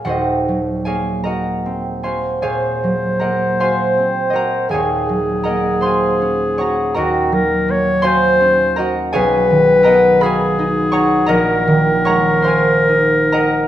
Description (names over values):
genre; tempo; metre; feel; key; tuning
classical, impressionist duo for clarinet and harp; 42-57 BPM (dotted quarters); 12/8; rubato; Eb dorian; A4 = 440 Hz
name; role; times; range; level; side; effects
concert harp; accompaniment; 0.0-13.7 s; Eb1 to Db6; -16 LUFS; right 1 dB; none
warm clarinet; melody; 2.4-13.7 s; Gb4 to Db5; -16 LUFS; left 2 dB; none
room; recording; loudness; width
wet recital hall reverb, RT60 1.3 s; none; -13 LUFS; side -12 dB against mid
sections
0.1-13.7 A section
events
none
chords
0.1 Ebm6; 9.2 B69; 11.3 Bb7sus4